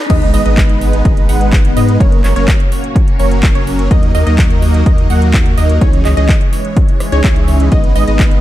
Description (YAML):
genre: EDM, festival progressive house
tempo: 126 BPM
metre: 4/4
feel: straight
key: G# minor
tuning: A4 = 440 Hz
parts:
  - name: riser and sub drop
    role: sound effects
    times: 0.0-2.0 s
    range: none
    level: -21 LUFS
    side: equal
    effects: none
  - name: lush unison pad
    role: sustained chords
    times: 0.4-8.4 s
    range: E3 to D#5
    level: -23 LUFS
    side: left 2 dB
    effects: chorus, phaser, sidechain pumping
  - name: wide unison pluck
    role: arpeggios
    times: 0.1-8.4 s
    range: C#5 to F#5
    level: -22 LUFS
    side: right 1 dB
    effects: auto-pan, sidechain pumping, tape echo
  - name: supersaw chords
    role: riff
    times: 0.1-8.4 s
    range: E3 to F#5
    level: -18 LUFS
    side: right 1 dB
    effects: cassette tape, sidechain pumping, tape echo
  - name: saturated sub bass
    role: bass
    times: 0.1-8.4 s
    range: F#1 to G#2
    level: -14 LUFS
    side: equal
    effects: sidechain pumping
  - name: electronic kick drum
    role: drums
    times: 0.1-8.3 s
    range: none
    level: -11 LUFS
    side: equal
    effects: overdrive, high-pass filter on kick, high-pass filter on room
  - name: house drum kit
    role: drums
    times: 0.1-8.4 s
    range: crash cymbal, handclaps, hi-hat, rim click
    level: -22 LUFS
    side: equal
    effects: overdrive
room: little or no reverb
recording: high-pass filter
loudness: -9 LUFS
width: side -14 dB against mid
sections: 0.1-8.4 A section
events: drop 0.1-8.4; impact 0.1-2.0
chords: 0.1 G#m; 2.0 F#; 3.9 D#m; 5.8 C#madd9; 7.7 G#m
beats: | 0.10 0.58 1.05 1.53 | 2.00 2.48 2.96 3.43 | 3.91 4.39 4.86 5.34 | 5.81 6.29 6.77 7.24 | 7.72 8.20